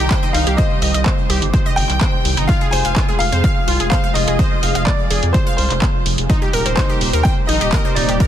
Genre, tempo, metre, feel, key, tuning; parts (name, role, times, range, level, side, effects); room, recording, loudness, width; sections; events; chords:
progressive house; 126 BPM; 4/4; straight; F dorian; A4 = 438 Hz
clear baby grand piano; melody; 0.0-8.3 s; C5 to Ab5; -24 LUFS; left 2 dB; digital delay
clear chamber violin section; second line; 0.0-8.3 s; C5 to Ab5; -28 LUFS; left 1 dB; sidechain pumping, digital delay
airy breathy pad; sustained chords; 0.0-8.3 s; C3 to Ab4; -25 LUFS; right 2 dB; chorus, phaser, sidechain pumping
wide unison pluck; arpeggios; 0.0-8.3 s; Eb4 to F5; -22 LUFS; right 1 dB; sidechain pumping, digital delay
round analog bass; bass; 0.0-8.2 s; Eb1 to F2; -19 LUFS; equal; tube saturation, sidechain pumping
electronic kick drum; drums; 0.1-8.3 s; -17 LUFS; equal; overdrive
pop drum kit; drums; 0.1-8.3 s; handclaps, hi-hat; -24 LUFS; right 1 dB
noise sweep; sound effects; 8.2-8.3 s; barely audible
digital ambience; dense, heavily limited modern master; -14 LUFS; side -10 dB against mid
0.0-8.3 A section
0.0 Cm; 2.5 Fm; 6.3 Eb6